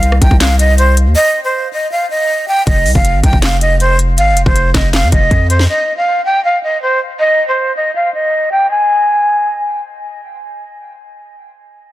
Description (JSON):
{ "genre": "hip hop, trap", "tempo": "159 BPM", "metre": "4/4", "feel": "half-time", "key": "F minor", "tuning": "A4 = 440 Hz", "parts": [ { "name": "breathy jazz flute", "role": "melody", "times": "0.0-9.8 s", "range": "C5 to Ab5", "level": "-13 LUFS", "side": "equal", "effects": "low-pass filter, ping-pong delay" }, { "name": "hard-hitting 808-style bass", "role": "bass", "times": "0.0-5.7 s", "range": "F1 to F2", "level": "-12 LUFS", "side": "equal", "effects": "none" }, { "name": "trap drum kit", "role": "drums", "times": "0.0-5.7 s", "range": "handclaps, hi-hat, kick drum, rim click, snare drum", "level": "-13 LUFS", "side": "equal", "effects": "none" } ], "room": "little or no reverb", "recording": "dense, heavily limited modern master", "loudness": "-10 LUFS", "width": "side -15 dB against mid", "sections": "0.0-2.7 A section; 2.7-8.7 B section; 8.7-11.7 C section", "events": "break 1.2-2.7; filter sweep on flute 2.7-8.7", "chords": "0.0 Cm; 2.7 F7(no3); 5.7 N.C." }